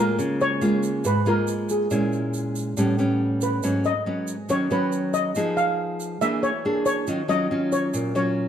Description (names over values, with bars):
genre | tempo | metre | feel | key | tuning
bossa nova | 139 BPM | 4/4 | straight | Eb minor | A4 = 440 Hz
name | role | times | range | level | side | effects
steel pan | melody | 0.0-8.5 s | Ab4 to F5 | -25 LUFS | left 1 dB | none
nylon-string guitar | accompaniment | 0.0-8.5 s | Ab2 to Ab4 | -23 LUFS | equal | none
egg shaker | percussion | 0.2-8.4 s | none | -38 LUFS | right 6 dB | none
room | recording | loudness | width
moderate echo chamber reverb, RT60 1.7 s | dark, warm production | -21 LUFS | side -9 dB against mid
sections
0.0-8.5 A section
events
none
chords
0.2 Db6; 1.9 Bbm7b5; 2.8 A9; 3.6 Abm7; 5.4 Fm7b5; 6.2 E7#11; 7.1 Ebm9